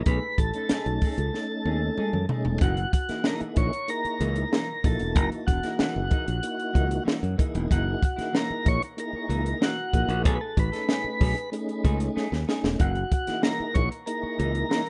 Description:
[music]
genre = funk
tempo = 94 BPM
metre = 4/4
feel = straight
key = F# mixolydian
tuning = A4 = 440 Hz
[part]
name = mellow tonewheel organ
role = stabs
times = 0.0-14.8 s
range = A3 to A4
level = -35 LUFS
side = equal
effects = chorus vibrato, fast rotary speaker
[part]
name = modern bright fingered electric bass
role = bass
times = 0.0-14.6 s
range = E1 to F#2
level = -30 LUFS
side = equal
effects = none
[part]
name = tonewheel organ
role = melody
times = 0.1-14.9 s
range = F#4 to C#5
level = -33 LUFS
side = equal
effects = slow rotary speaker, tape echo
[part]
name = semi-hollow electric guitar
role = accompaniment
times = 0.1-14.9 s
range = E3 to A4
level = -39 LUFS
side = equal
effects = spring reverb
[part]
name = compact cocktail drum kit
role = drums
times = 0.1-14.9 s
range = hi-hat, kick drum, snare drum, toms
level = -28 LUFS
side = equal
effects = none
[sound]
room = light reverb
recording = rough home demo mix, nothing above 10.3 kHz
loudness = -26 LUFS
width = mono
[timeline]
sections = 0.0-2.6 A section; 2.6-14.9 B section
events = drum fill 1.3-2.6, 12.2-12.8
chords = 0.1 B13; 2.6 F#13; 10.3 B13; 12.8 F#13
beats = | 0.07 0.71 1.34 1.98 | 2.62 3.25 3.89 4.53 | 5.16 5.80 6.44 7.07 | 7.71 8.35 8.98 9.62 | 10.26 10.89 11.53 12.17 | 12.80 13.44 14.07 14.71

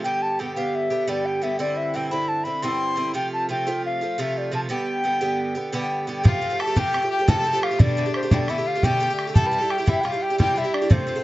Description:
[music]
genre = celtic folk, Celtic slip jig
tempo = 116 BPM (dotted quarters)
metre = 9/8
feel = straight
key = G mixolydian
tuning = A4 = 440 Hz
[part]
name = bright reedy wooden flute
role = melody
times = 0.0-11.2 s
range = C5 to C6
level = -25 LUFS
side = left 1 dB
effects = none
[part]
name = Irish bouzouki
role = accompaniment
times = 0.0-11.2 s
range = G2 to A4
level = -25 LUFS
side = right 2 dB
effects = none
[part]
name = warm fiddle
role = second line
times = 6.3-11.2 s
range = C4 to B4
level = -29 LUFS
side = left 6 dB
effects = none
[part]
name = bodhran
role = percussion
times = 6.3-11.0 s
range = none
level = -19 LUFS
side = equal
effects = none
[sound]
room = light reverb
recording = dark, warm production, nothing above 7.8 kHz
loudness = -20 LUFS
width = side -17 dB against mid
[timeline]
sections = 0.0-6.3 A section; 6.3-11.2 B section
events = none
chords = 0.0 G; 1.6 Cadd9; 3.2 F; 4.7 G; 6.3 Fadd9; 7.8 Gadd9; 9.4 C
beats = | 0.05 0.56 1.08 | 1.60 2.12 2.63 | 3.15 3.67 4.19 | 4.70 5.22 5.74 | 6.25 6.77 7.29 | 7.80 8.32 8.84 | 9.36 9.87 10.39 | 10.90

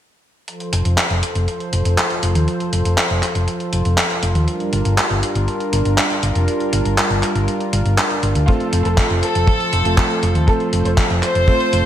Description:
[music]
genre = italo disco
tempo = 120 BPM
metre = 4/4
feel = straight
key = unclear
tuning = A4 = 440 Hz
[part]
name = warm analog pad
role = sustained chords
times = 0.5-11.9 s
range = F3 to C5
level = -22 LUFS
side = equal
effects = chorus
[part]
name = dusty soul sampler-style drum kit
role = drums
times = 0.5-11.8 s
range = handclaps, hi-hat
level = -21 LUFS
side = equal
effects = gated reverb
[part]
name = hollow-body short-scale fingered electric bass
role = bass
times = 0.7-11.8 s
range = F1 to Eb2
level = -18 LUFS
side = equal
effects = none
[part]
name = clear chamber violin section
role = melody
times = 8.5-11.9 s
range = F4 to C5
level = -21 LUFS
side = equal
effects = none
[part]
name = warm electric grand piano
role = stabs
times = 8.5-11.8 s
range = A3 to A4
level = -22 LUFS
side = right 2 dB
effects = none
[part]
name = kick drum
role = drums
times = 8.5-11.6 s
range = none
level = -15 LUFS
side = equal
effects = none
[sound]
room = moderate lush hall reverb, RT60 1.8 s, studio ambience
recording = bright 1980s-style digital production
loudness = -15 LUFS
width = side -11 dB against mid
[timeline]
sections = 0.5-11.9 A section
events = none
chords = 0.5 F; 4.5 Gm7; 8.5 F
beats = | 0.48 0.98 1.48 1.98 | 2.48 2.98 3.48 3.98 | 4.48 4.98 5.48 5.98 | 6.48 6.98 7.48 7.98 | 8.48 8.98 9.48 9.98 | 10.48 10.98 11.48

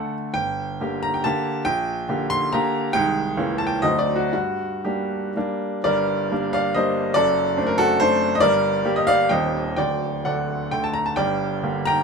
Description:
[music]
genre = classical, romantic triple-time dance for piano with dotted rhythms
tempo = 112-151 BPM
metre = 3/4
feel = rubato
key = G minor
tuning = A4 = 440 Hz
[part]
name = clear baby grand piano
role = solo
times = 0.0-12.0 s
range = D1 to C6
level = -20 LUFS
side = equal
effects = none
[sound]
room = light reverb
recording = none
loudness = -20 LUFS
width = side -5 dB against mid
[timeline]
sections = 0.0-5.8 A section; 5.8-12.0 B section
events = none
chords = 0.4 Gm; 1.7 Gm/Bb; 2.9 Ab/C; 3.4 C#dim7; 3.8 D7; 4.3 Gm; 7.2 D7/F#; 8.4 Gm; 9.3 Cm/Eb; 9.8 D; 11.2 Gm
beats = | 0.35 0.81 1.24 | 1.65 2.08 2.52 | 2.94 3.37 3.83 | 4.33 4.85 5.36 | 5.84 6.31 6.76 | 7.16 7.58 8.00 | 8.42 8.85 9.31 | 9.77 10.26 10.73 | 11.18 11.64

